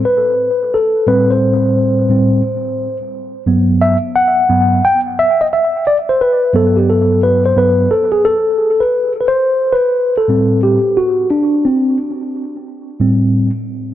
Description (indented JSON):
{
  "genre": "hip hop",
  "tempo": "88 BPM",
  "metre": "4/4",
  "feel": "swing 63% on 16ths",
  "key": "A dorian",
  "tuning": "A4 = 440 Hz",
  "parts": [
    { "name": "mellow tine electric piano", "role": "solo", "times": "0.0-13.5 s", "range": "G2 to G5", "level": "-12 LUFS", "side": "equal", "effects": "medium stereo tremolo, analog delay" }
  ],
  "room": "light reverb",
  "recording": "echo-heavy mix",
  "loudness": "-11 LUFS",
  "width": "side -12 dB against mid",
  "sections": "0.0-9.3 A section; 9.3-13.9 A section",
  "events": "tine electric piano solo 0.0-9.3, 9.3-13.9",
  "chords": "0.0 Am7; 3.5 Gmaj7; 9.3 Am7"
}